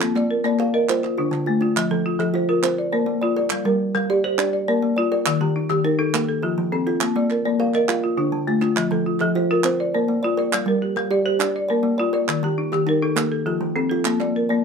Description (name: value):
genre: southern african traditional, mbira-style interlocking cycle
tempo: 137 BPM (dotted quarters)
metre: 12/8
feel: straight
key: unclear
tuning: A4 = 439 Hz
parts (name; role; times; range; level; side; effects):
- folk marimba with hard mallets; arpeggios; 0.0-14.6 s; D3 to F5; -21 LUFS; left 2 dB; none
- kalimba; arpeggios; 0.0-14.6 s; D3 to F5; -23 LUFS; right 3 dB; none
- group handclap; percussion; 0.0-14.3 s; none; -25 LUFS; right 6 dB; none
room: light reverb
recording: minimal, uncompressed stereo recording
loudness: -19 LUFS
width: side -6 dB against mid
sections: 0.0-1.8 A section; 1.8-14.6 B section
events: none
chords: 0.0 Bb; 0.9 Dm; 1.8 F; 2.6 Bb; 3.5 Gm; 4.4 Bb; 5.3 Eb; 6.1 F; 7.0 Bb; 7.9 Dm; 8.8 F; 9.6 Bb; 10.5 Gm; 11.4 Bb; 12.3 Eb; 13.2 F; 14.1 Bb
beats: | 0.01 0.45 0.88 1.32 | 1.76 2.20 2.63 3.07 | 3.51 3.95 4.38 4.82 | 5.26 5.70 6.13 6.57 | 7.01 7.45 7.89 8.33 | 8.77 9.21 9.65 10.09 | 10.53 10.97 11.41 11.85 | 12.29 12.73 13.17 13.61 | 14.05 14.49